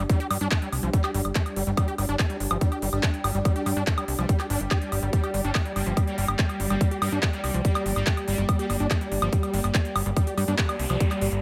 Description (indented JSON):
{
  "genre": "psychedelic trance",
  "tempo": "143 BPM",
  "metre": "4/4",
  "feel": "straight",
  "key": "G minor",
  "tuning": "A4 = 440 Hz",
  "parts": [
    { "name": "pulsing gated texture", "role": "sustained chords", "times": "0.0-11.4 s", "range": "G3 to D4", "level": "-36 LUFS", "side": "equal", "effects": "chorus, built-in reverb, sidechain pumping" },
    { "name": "screaming distorted acid line", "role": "riff", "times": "0.0-11.3 s", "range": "F3 to G4", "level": "-34 LUFS", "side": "equal", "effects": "distortion, chorus, sidechain pumping, digital delay" },
    { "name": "plucky analog bass", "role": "bass", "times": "0.0-11.4 s", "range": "G1 to G2", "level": "-30 LUFS", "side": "equal", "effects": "none" },
    { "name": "warbly tape-like pad", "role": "texture", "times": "0.0-11.4 s", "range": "G4 to G5", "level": "-37 LUFS", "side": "equal", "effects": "chorus, built-in reverb, sidechain pumping" },
    { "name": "big-room dance drum kit", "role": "drums", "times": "0.1-11.4 s", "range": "handclaps, hi-hat, woodblock", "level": "-32 LUFS", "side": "equal", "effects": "none" },
    { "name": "electronic kick drum", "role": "drums", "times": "0.1-11.1 s", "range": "none", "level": "-26 LUFS", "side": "equal", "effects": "none" },
    { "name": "noise sweep", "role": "sound effects", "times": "10.6-11.4 s", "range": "none", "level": "-40 LUFS", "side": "equal", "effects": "none" }
  ],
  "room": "light reverb, digital ambience",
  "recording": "none",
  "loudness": "-25 LUFS",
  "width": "mono",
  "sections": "0.0-11.4 A section",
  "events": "filter sweep on acid bass 0.0-11.4; noise sweep 10.6-11.4",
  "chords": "0.0 G5"
}